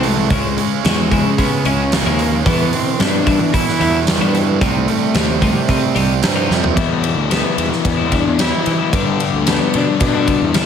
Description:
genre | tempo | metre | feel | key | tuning
quiet-loud alternative rock | 111 BPM | 4/4 | straight | unclear | A4 = 439 Hz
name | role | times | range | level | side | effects
dark cello | melody | 0.0-10.7 s | G3 to E4 | -20 LUFS | left 4 dB | none
twelve-string electric guitar | arpeggios | 0.0-10.7 s | G2 to E4 | -23 LUFS | left 6 dB | harmonic tremolo, analog delay
fuzz guitar | riff | 0.0-6.8 s | E2 to C#4 | -20 LUFS | right 13 dB | distortion
fuzz picked electric bass | bass | 0.0-10.7 s | C2 to E3 | -20 LUFS | equal | overdrive
big rock drum kit | drums | 0.0-10.7 s | hi-hat, kick drum, ride cymbal, snare drum, toms | -19 LUFS | right 1 dB | none
fuzz guitar | riff | 6.8-10.7 s | E2 to G3 | -21 LUFS | left 12 dB | distortion
room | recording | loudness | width
light reverb, studio ambience | none | -13 LUFS | side -8 dB against mid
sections
0.0-6.8 A section; 6.8-10.7 B section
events
drum fill 6.5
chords
0.3 C#m; 2.5 Em; 4.6 Cm; 6.8 Em

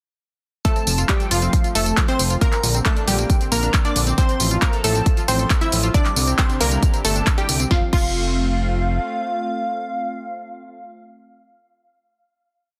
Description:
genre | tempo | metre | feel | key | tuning
uplifting trance | 136 BPM | 4/4 | straight | F major | A4 = 440 Hz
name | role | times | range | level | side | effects
unison pluck | melody | 0.6-11.0 s | F3 to E5 | -27 LUFS | equal | sidechain pumping, dub echo
lush unison pad | sustained chords | 0.6-10.8 s | C3 to G4 | -33 LUFS | equal | chorus, phaser, sidechain pumping
analog pluck | arpeggios | 0.6-8.1 s | D3 to A4 | -32 LUFS | equal | chorus, sidechain pumping, dub echo
electronic kick drum | drums | 0.6-8.1 s | none | -21 LUFS | equal | none
punchy analog drum machine | drums | 0.6-8.1 s | crash cymbal, handclaps, hi-hat, snare drum, tambourine | -26 LUFS | equal | sidechain pumping on hats, sidechain pumping on perc, sidechain pumping on cymbals
plucky unison lead | second line | 0.7-11.0 s | F5 to E6 | -30 LUFS | equal | sidechain pumping, dub echo
fat analog bass | bass | 0.9-9.0 s | F1 to C2 | -24 LUFS | equal | sidechain pumping
room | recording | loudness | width
light reverb | dense, heavily limited modern master | -19 LUFS | mono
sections
0.7-7.7 drop; 7.7-11.2 final chord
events
drop 0.7-7.7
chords
0.7 F; 2.4 Bbadd9; 4.2 F/A; 5.9 Cadd9; 7.7 F

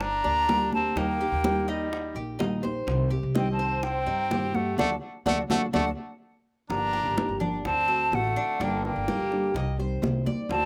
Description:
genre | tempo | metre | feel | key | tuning
latin, Cuban son and guajira | 126 BPM | 4/4 | straight | G minor from 6.7 s | A4 = 440 Hz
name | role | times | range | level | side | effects
hollow concert flute | melody | 0.0-10.7 s | Eb5 to Bb5 | -30 LUFS | equal | slapback echo
bright trumpet | second line | 0.0-10.7 s | G3 to D4 | -37 LUFS | equal | none
nylon-string guitar | accompaniment | 0.0-10.7 s | C3 to A4 | -36 LUFS | equal | slapback echo
Cuban tres | arpeggios | 0.0-10.7 s | D4 to Eb5 | -35 LUFS | equal | slapback echo
upright bass | bass | 0.0-10.7 s | G1 to G2 | -34 LUFS | equal | none
bongos | percussion | 0.0-10.7 s | none | -37 LUFS | equal | slapback echo
congas | percussion | 0.0-10.7 s | none | -34 LUFS | equal | none
room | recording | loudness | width
little or no reverb | recorded outdoors, with no room sound | -27 LUFS | mono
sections
0.0-6.7 A section; 6.7-10.7 B section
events
band accent 4.8-6.7; drum fill 5.7-6.7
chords
0.0 Gm; 1.0 Eb; 2.9 Cm; 4.8 D; 6.7 Gm7; 7.6 D7; 8.6 Gmadd9; 9.6 Cm

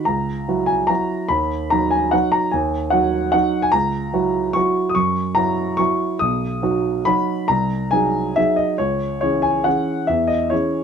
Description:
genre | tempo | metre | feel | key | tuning
classical, piano waltz | 127-157 BPM | 3/4 | rubato | B major | A4 = 439 Hz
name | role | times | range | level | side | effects
warm upright piano | solo | 0.0-10.8 s | B1 to D#6 | -17 LUFS | equal | none
room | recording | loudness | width
light reverb | close, detailed microphones | -17 LUFS | side -7 dB against mid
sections
0.0-10.8 A section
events
none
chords
0.1 F#7/C#; 1.3 B/D#; 3.7 F#7/C#; 6.2 B; 7.5 G#7/B#; 8.8 C#m; 10.1 C#m/E

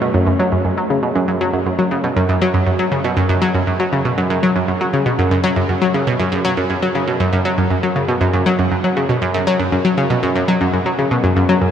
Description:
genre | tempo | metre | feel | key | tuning
ambient | 119 BPM | 4/4 | straight | unclear | A4 = 438 Hz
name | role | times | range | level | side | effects
analog pluck | solo | 0.0-11.7 s | F#2 to F#3 | -14 LUFS | equal | chorus, analog delay
room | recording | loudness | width
wet huge ambient reverb, RT60 8.9 s | dreamy mix soaked in reverb, cassette tape | -14 LUFS | side -8 dB against mid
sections
0.0-11.7 A section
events
none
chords
none

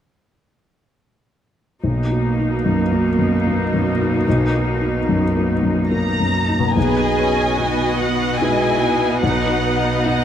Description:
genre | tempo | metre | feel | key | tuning
cinematic, emotional film score for orchestra | 74 BPM | 3/4 | rubato | B major | A4 = 438 Hz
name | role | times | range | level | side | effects
clear symphonic viola section | accompaniment | 1.8-10.2 s | G#3 to G#4 | -22 LUFS | right 2 dB | none
felt-muted upright piano | accompaniment | 1.8-10.2 s | B1 to F#4 | -20 LUFS | left 1 dB | none
clear symphonic cello section | bass | 1.8-10.2 s | B2 | -23 LUFS | right 3 dB | none
warm symphonic violin section | melody | 5.9-10.2 s | D#5 to A#5 | -22 LUFS | left 3 dB | none
concert harp | arpeggios | 6.6-10.2 s | B2 to A#5 | -28 LUFS | left 6 dB | none
clear chamber violin section | second line | 6.8-10.2 s | B4 to F#5 | -23 LUFS | left 2 dB | none
room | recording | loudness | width
light reverb | close, detailed microphones | -16 LUFS | side -9 dB against mid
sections
1.8-6.8 A section; 6.8-10.2 B section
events
none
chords
1.8 Bmaj7

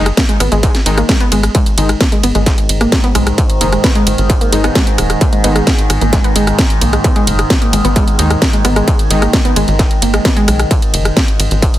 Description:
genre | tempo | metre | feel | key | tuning
driving peak-time techno | 131 BPM | 4/4 | straight | G# minor | A4 = 440 Hz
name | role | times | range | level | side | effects
supersaw stab | stabs | 0.0-9.2 s | D#3 to D#4 | -21 LUFS | left 2 dB | cassette tape, sidechain pumping, dub echo
tight sequencer bass | bass | 0.0-11.7 s | D#1 to D#2 | -15 LUFS | equal | sidechain pumping
techno drum kit | drums | 0.1-11.8 s | hi-hat, ride cymbal, rim click, snare drum | -17 LUFS | equal | overdrive, sidechain pumping on hats, sidechain pumping on cymbals
wide unison pluck | riff | 0.2-10.5 s | G#3 to B3 | -18 LUFS | equal | sidechain pumping, digital delay
electronic kick drum | drums | 0.2-11.7 s | none | -13 LUFS | equal | distortion, overdrive
overtone-sweeping drone | drone | 2.3-11.8 s | G#2 to D#3 | -20 LUFS | equal | chorus, built-in reverb, sidechain pumping
room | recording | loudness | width
light reverb | dense, heavily limited modern master | -10 LUFS | side -14 dB against mid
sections
0.0-11.8 A section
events
none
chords
0.0 G#5

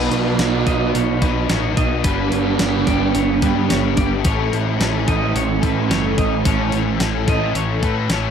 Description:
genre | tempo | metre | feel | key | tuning
rock, shoegaze and dream pop | 109 BPM | 4/4 | straight | unclear | A4 = 440 Hz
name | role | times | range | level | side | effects
electric guitar at the edge of break-up | arpeggios | 0.0-8.3 s | B4 to D#5 | -27 LUFS | right 1 dB | wide subtle chorus, slapback echo
biting overdriven guitar | riff | 0.0-8.3 s | G2 to E4 | -21 LUFS | right 10 dB | reverse reverb
raw garage guitar | riff | 0.0-8.3 s | G2 to A4 | -22 LUFS | left 11 dB | overdrive, ensemble chorus
growling picked electric bass | bass | 0.0-8.3 s | F#1 to A2 | -23 LUFS | equal | overdrive
crisp 8-bit digital drum machine | drums | 0.1-8.2 s | hi-hat, kick drum, snare drum | -21 LUFS | equal | overdrive
room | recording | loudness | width
light reverb | none | -16 LUFS | side -7 dB against mid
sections
0.0-8.3 A section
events
none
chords
0.0 Badd9; 2.0 G; 4.3 A

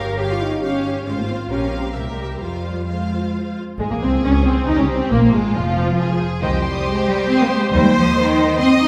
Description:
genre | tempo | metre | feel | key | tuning
quick classical-period movement for string orchestra | 137 BPM | 3/4 | rubato | F minor | A4 = 440 Hz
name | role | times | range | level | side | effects
clear studio violin section | melody | 0.0-8.9 s | F4 to F5 | -28 LUFS | equal | none
warm studio violin section | second line | 0.0-8.9 s | Ab3 to Eb6 | -30 LUFS | equal | none
dark studio viola section | accompaniment | 0.0-8.9 s | F3 to C5 | -26 LUFS | equal | none
dark studio cello section | bass | 0.0-8.9 s | Eb3 to Bb4 | -22 LUFS | equal | none
rich studio double bass section | bass | 0.0-8.1 s | F1 to F2 | -24 LUFS | equal | none
room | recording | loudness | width
wet scoring stage reverb, RT60 1.7 s | heard from further back in the room | -19 LUFS | mono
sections
0.0-3.8 A section; 3.8-8.9 A section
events
none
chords
0.0 Gm7b5; 1.1 Fm/Ab; 1.5 Gm7b5/Bb; 1.9 C7; 2.4 Fm; 3.8 Abadd11; 5.1 Fm; 6.4 Cm; 7.7 Cm/Eb

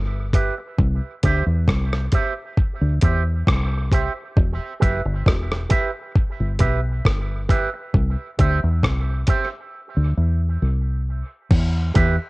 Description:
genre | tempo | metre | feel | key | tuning
dub reggae | 67 BPM | 4/4 | straight | unclear | A4 = 440 Hz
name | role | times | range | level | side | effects
deep dub fingered electric bass | bass | 0.0-12.2 s | E1 to E2 | -20 LUFS | equal | transformer saturation
electric guitar with an envelope filter | accompaniment | 0.3-12.2 s | G4 to E5 | -27 LUFS | right 5 dB | cassette tape, dub echo
dusty soul sampler-style drum kit | drums | 0.3-12.2 s | crash cymbal, hi-hat, kick drum, rim click | -19 LUFS | equal | cassette tape
room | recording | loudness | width
digital ambience | home recording on cassette | -18 LUFS | side -22 dB against mid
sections
0.0-11.5 A section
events
drums muted 9.7-11.5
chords
0.0 Em; 0.8 C; 4.4 Em; 7.9 C; 11.5 Em

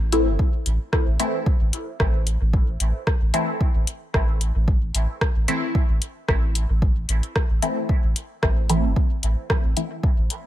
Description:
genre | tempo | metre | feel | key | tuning
dub techno | 112 BPM | 4/4 | swing 54% on 16ths | A minor | A4 = 440 Hz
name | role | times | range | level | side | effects
filtered dub chord stab | stabs | 0.0-10.1 s | E3 to E4 | -26 LUFS | left 1 dB | phaser, cassette tape, sidechain pumping, dub echo
soft dub sub bass | bass | 0.0-10.3 s | G1 to A1 | -22 LUFS | equal | tube saturation, sidechain pumping
deep house drum kit | drums | 0.1-10.4 s | hi-hat, rim click | -26 LUFS | left 1 dB | overdrive
electronic kick drum | drums | 0.4-10.1 s | none | -21 LUFS | equal | overdrive
room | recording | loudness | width
little or no reverb | none | -20 LUFS | side -13 dB against mid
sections
0.0-10.5 A section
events
none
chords
0.0 Am

